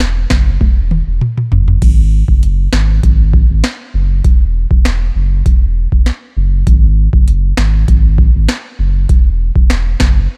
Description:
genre	dancehall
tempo	99 BPM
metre	4/4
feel	straight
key	unclear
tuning	A4 = 440 Hz
part	saturated sub bass	bass	0.0-10.3 s	E1 to G#1	-15 LUFS	equal	none
part	booming analog drum machine	drums	0.0-10.2 s	crash cymbal, finger snaps, hi-hat, kick drum, snare drum, toms	-13 LUFS	equal	none
room	little or no reverb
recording	dark, warm production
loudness	-12 LUFS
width	mono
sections	0.0-1.8 A section; 1.8-10.4 B section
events	drum fill 0.6-1.8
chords	none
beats	0.00 0.61 1.21 | 1.82 2.43 3.03 3.64 | 4.25 4.85 5.46 6.06 | 6.67 7.28 7.88 8.49 | 9.09 9.70

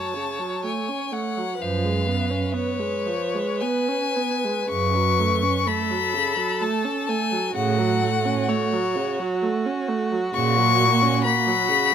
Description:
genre	classical, slow romantic movement for string quartet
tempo	54-68 BPM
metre	3/4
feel	rubato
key	F# minor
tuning	A4 = 440 Hz
part	rich violin	melody	0.0-11.9 s	C#5 to C#6	-24 LUFS	left 8 dB	none
part	rich violin	second line	0.0-11.9 s	F#4 to C#5	-28 LUFS	equal	none
part	warm viola	accompaniment	0.0-11.9 s	C#3 to C#4	-26 LUFS	right 5 dB	none
part	warm cello	bass	1.6-11.1 s	F#2 to A#2	-25 LUFS	right 4 dB	none
room	light reverb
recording	close, detailed microphones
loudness	-20 LUFS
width	side -8 dB against mid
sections	0.0-11.9 A section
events	none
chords	0.0 F#m; 1.6 C#7/F#; 4.7 F#m; 7.6 F#m/A; 10.4 F#/A#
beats	0.65 | 1.61 2.55 3.62 | 4.71 5.68 6.62 | 7.56 8.49 9.42 | 10.35 11.25

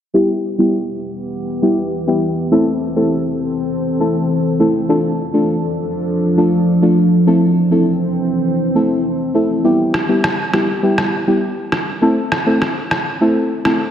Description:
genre	dancehall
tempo	101 BPM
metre	4/4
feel	straight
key	A minor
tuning	A4 = 440 Hz
part	deep mellow chord stab	accompaniment	0.1-13.8 s	G3 to A4	-16 LUFS	equal	chorus, low-pass filter
part	deep dark ambient pad	sustained chords	1.0-9.6 s	E3 to A4	-17 LUFS	equal	chorus, built-in reverb, low-pass filter
part	electronic rim click	drums	9.9-13.8 s	none	-19 LUFS	equal	none
room	wet lush hall reverb, RT60 2.5 s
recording	dreamy mix soaked in reverb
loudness	-14 LUFS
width	side -9 dB against mid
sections	0.1-9.6 A section; 9.6-13.9 B section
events	filter sweep 0.1-9.6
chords	0.1 Em; 2.5 Am; 4.9 Dm; 7.3 Am; 9.6 Em; 12.0 Am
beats	| 0.14 0.73 1.33 1.92 | 2.52 3.11 3.70 4.30 | 4.89 5.49 6.08 6.67 | 7.27 7.86 8.46 9.05 | 9.64 10.24 10.83 11.43 | 12.02 12.62 13.21

